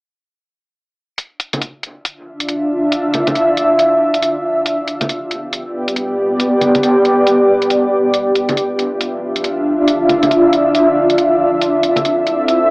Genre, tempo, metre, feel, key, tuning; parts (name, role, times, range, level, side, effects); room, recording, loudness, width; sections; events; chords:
deep dubstep; 138 BPM; 4/4; swing 62% on 16ths, half-time; D dorian; A4 = 440 Hz
granular cloud pad; sustained chords; 2.4-12.7 s; B3 to E5; -12 LUFS; equal; built-in reverb, cassette tape
electronic hi-hat; drums; 1.2-12.6 s; -21 LUFS; equal; small room ambience, cassette tape
congas; percussion; 1.5-12.0 s; -24 LUFS; equal; dub echo
moderate studio reverb, RT60 0.5 s; home recording on cassette, AM radio sound; -12 LUFS; side -32 dB against mid
1.2-12.7 A section
1.2 Dmadd9; 4.7 G; 8.1 Dmadd9; 11.6 Am